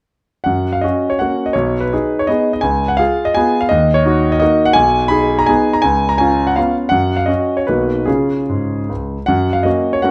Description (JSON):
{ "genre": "classical, romantic triple-time dance for piano with dotted rhythms", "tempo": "139-180 BPM", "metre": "3/4", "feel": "rubato", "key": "F# major", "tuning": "A4 = 439 Hz", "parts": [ { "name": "clear concert grand piano", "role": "solo", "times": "0.4-10.1 s", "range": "B1 to B5", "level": "-15 LUFS", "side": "equal", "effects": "none" } ], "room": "moderate recital hall reverb, RT60 1.2 s", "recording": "close, detailed microphones", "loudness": "-15 LUFS", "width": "mono", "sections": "0.5-9.3 A section", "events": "none", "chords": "0.5 F#; 1.6 G#m/B; 2.6 C#7; 3.7 D#m7; 4.8 G#m/B; 5.8 C#7; 6.9 F#5; 7.7 Bmaj7; 8.1 C#; 9.3 F#", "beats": "| 0.47 0.83 1.21 | 1.56 1.93 2.30 | 2.65 3.00 3.36 | 3.70 4.05 4.41 | 4.75 5.12 5.49 | 5.85 6.21 6.58 | 6.92 7.29 7.69 | 8.07 8.48 8.90 | 9.28 9.66 10.05" }